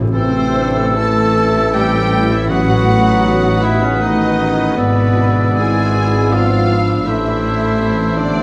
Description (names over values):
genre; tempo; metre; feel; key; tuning
classical, slow romantic movement for symphony orchestra; 78 BPM; 3/4; uneven beats, rubato; A minor; A4 = 441 Hz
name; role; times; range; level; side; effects
concert harp; arpeggios; 0.0-8.4 s; G#2 to B5; -27 LUFS; equal; none
timpani; percussion; 0.0-3.6 s; A2; -25 LUFS; equal; none
muted symphonic violin section; melody; 0.1-8.4 s; B4 to A5; -26 LUFS; equal; none
muted symphonic violin section; second line; 0.1-8.4 s; B3 to A4; -30 LUFS; equal; none
silver concert flute; second line; 0.1-8.4 s; D#6 to E6; -26 LUFS; equal; none
warm clarinet; second line; 0.1-8.4 s; B3 to A4; -25 LUFS; equal; none
warm oboe; second line; 0.1-8.4 s; A4 to D5; -26 LUFS; equal; none
clear bassoon; accompaniment; 0.1-8.4 s; E3 to B3; -24 LUFS; equal; none
muted symphonic viola section; accompaniment; 0.1-8.4 s; A3 to F#4; -27 LUFS; equal; none
mellow French horn section; sustained chords; 0.1-8.4 s; B2 to A3; -24 LUFS; equal; none
dark tuba; bass; 0.1-8.4 s; G#1 to A1; -24 LUFS; equal; none
muted symphonic cello section; bass; 0.1-8.4 s; G#2 to A2; -24 LUFS; equal; none
muted symphonic double bass section; bass; 0.1-8.4 s; G#1 to A1; -24 LUFS; equal; none
room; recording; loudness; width
moderate recital hall reverb, RT60 1.5 s; vinyl crackle; -14 LUFS; mono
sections
0.1-8.4 A section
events
none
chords
0.1 Am; 2.5 B7/A; 4.8 E7/G#; 7.1 Am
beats
| 0.13 0.95 1.74 | 2.49 3.24 4.01 | 4.77 5.57 6.32 | 7.06 7.80